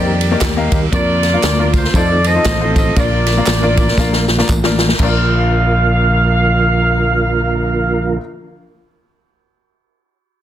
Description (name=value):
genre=uptempo gospel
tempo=118 BPM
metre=4/4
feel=swing 60% on 8ths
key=Bb major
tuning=A4 = 439 Hz
part: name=warm horn section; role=melody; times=0.0-8.2 s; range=F4 to F5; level=-18 LUFS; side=right 1 dB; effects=none
part: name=clear grand piano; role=accompaniment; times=0.0-8.2 s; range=Bb1 to F5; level=-22 LUFS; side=left 5 dB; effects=none
part: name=mellow tonewheel organ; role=sustained chords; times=0.0-8.2 s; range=D3 to Bb4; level=-21 LUFS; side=right 3 dB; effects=fast rotary speaker, chorus vibrato
part: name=fingered electric bass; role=bass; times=0.0-8.2 s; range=A1 to F2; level=-16 LUFS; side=equal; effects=none
part: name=swinging big-band drum kit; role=drums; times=0.2-5.1 s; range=crash cymbal, kick drum, ride cymbal, snare drum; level=-17 LUFS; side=equal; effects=none
part: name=tambourine and handclaps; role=percussion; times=0.2-5.3 s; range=none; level=-29 LUFS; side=right 2 dB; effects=none
room=light reverb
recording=dense, heavily limited modern master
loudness=-12 LUFS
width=side -11 dB against mid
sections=0.0-5.0 A section; 5.0-9.1 B section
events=drum fill 4.0-5.0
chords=0.0 Eb; 0.9 Bb/F; 1.9 F7; 3.0 Bb